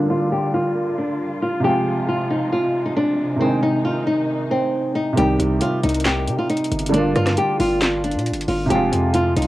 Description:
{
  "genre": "hip hop, trap",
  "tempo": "136 BPM",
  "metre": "4/4",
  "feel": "half-time",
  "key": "C minor",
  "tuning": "A4 = 440 Hz",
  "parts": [
    { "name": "flamenco guitar", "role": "melody", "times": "0.0-9.5 s", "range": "C4 to G4", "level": "-20 LUFS", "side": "left 1 dB", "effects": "low-pass filter, plate reverb" },
    { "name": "felt-muted upright piano", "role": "accompaniment", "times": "0.0-9.5 s", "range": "C3 to F4", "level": "-22 LUFS", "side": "right 2 dB", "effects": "low-pass filter, cassette tape, plate reverb" },
    { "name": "dark symphonic string section", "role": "sustained chords", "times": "0.0-5.2 s", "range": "C3 to F4", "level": "-31 LUFS", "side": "left 2 dB", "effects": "low-pass filter, cassette tape, plate reverb" },
    { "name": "distorted 808-style bass", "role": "bass", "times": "5.2-9.5 s", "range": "F1 to C3", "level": "-23 LUFS", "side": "equal", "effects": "distortion" },
    { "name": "trap drum kit", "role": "drums", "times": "5.2-9.5 s", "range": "handclaps, hi-hat, rim click, snare drum", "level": "-25 LUFS", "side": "equal", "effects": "cassette tape" }
  ],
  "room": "moderate booth ambience, RT60 0.2 s",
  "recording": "home recording on cassette",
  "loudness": "-18 LUFS",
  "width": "side -16 dB against mid",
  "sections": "0.0-5.2 A section; 5.2-9.5 B section",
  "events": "filter sweep 0.0-5.2",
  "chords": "0.0 Gm7; 1.6 Fm; 3.4 Ab; 5.2 Cm; 6.9 Gm7; 8.7 Fm"
}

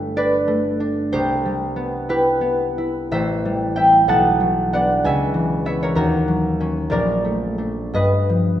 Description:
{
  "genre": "classical, solo harp piece",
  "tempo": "62 BPM (dotted quarters)",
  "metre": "6/8",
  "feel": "uneven beats, rubato",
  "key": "unclear",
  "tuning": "A4 = 440 Hz",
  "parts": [
    { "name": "concert harp", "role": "solo", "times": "0.0-8.6 s", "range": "G1 to A5", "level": "-17 LUFS", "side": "equal", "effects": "none" }
  ],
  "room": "wet recital hall reverb, RT60 1.7 s",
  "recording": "dark, warm production",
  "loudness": "-17 LUFS",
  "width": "side -11 dB against mid",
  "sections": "0.0-8.6 A section",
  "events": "none",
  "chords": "0.0 Gadd9; 1.1 Cmaj7; 3.1 Am7; 4.1 Bm7; 5.0 Dbm7; 6.0 Ebm7; 6.9 Bbmaj7; 8.0 Gaug7"
}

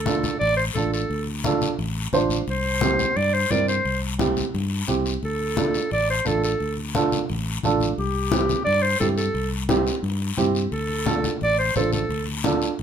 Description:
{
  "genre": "latin, cumbia",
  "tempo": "174 BPM",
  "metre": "4/4",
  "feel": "straight",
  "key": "D minor",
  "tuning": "A4 = 441 Hz",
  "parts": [
    { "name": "clear clarinet", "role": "melody", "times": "0.0-12.3 s", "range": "G4 to D5", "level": "-23 LUFS", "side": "right 1 dB", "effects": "none" },
    { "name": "fingered electric bass", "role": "bass", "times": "0.0-12.8 s", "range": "A1 to G2", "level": "-27 LUFS", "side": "left 1 dB", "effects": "none" },
    { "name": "dark upright piano", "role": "accompaniment", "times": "0.1-12.7 s", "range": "C4 to C5", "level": "-24 LUFS", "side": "right 5 dB", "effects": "none" },
    { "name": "congas", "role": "percussion", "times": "0.1-12.8 s", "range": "none", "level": "-28 LUFS", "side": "left 4 dB", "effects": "none" },
    { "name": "guiro", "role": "percussion", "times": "0.1-12.8 s", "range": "none", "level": "-33 LUFS", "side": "left 6 dB", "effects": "none" }
  ],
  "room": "moderate studio reverb, RT60 0.5 s",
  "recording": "minimal, uncompressed stereo recording",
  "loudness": "-20 LUFS",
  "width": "side -8 dB against mid",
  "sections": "0.0-12.8 A section",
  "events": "none",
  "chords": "0.0 Dm; 2.5 C; 5.2 Dm; 8.0 C; 10.7 Dm"
}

